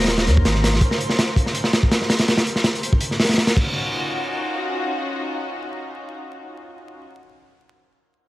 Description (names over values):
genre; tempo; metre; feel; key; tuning
drum and bass, jungle; 164 BPM; 4/4; swing 53% on 16ths; Eb dorian; A4 = 440 Hz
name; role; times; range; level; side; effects
dark studio string section; sustained chords; 0.0-7.0 s; Db4 to Bb4; -28 LUFS; left 1 dB; vintage 12-bit sampler grit
saturated sub bass; bass; 0.0-0.8 s; Eb1 to Eb2; -18 LUFS; equal; none
crunchy breakbeat drum kit; drums; 0.0-3.6 s; crash cymbal, hi-hat, kick drum, snare drum; -18 LUFS; equal; none
twinkling granular texture; texture; 0.0-3.8 s; Bb4 to C5; -33 LUFS; right 1 dB; built-in reverb
room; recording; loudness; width
light reverb, studio reverb; vinyl crackle; -18 LUFS; side -16 dB against mid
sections
0.0-3.7 A section; 3.7-6.7 B section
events
drop 0.0-3.7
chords
0.0 Eb7sus2; 3.7 Ebm9